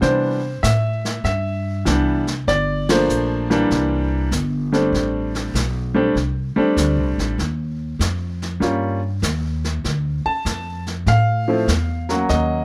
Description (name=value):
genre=jazz piano trio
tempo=98 BPM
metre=4/4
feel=swing 67% on 8ths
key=C major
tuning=A4 = 441 Hz
part: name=clear concert grand piano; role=melody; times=0.0-12.6 s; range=E3 to A5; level=-22 LUFS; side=equal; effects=none
part: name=upright bass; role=bass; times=0.0-12.6 s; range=G1 to C3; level=-24 LUFS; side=equal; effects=none
part: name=vintage brush drum kit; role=drums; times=0.0-12.6 s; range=brushed snare drum, hi-hat, ride cymbal, snare drum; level=-30 LUFS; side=equal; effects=none
room=light reverb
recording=none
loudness=-20 LUFS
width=mono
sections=0.0-12.6 A section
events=band accent 2.8-3.1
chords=0.0 Cmaj7; 2.5 Gm7; 3.7 C7; 4.9 Am11; 7.4 Ebadd9; 9.8 Dmadd9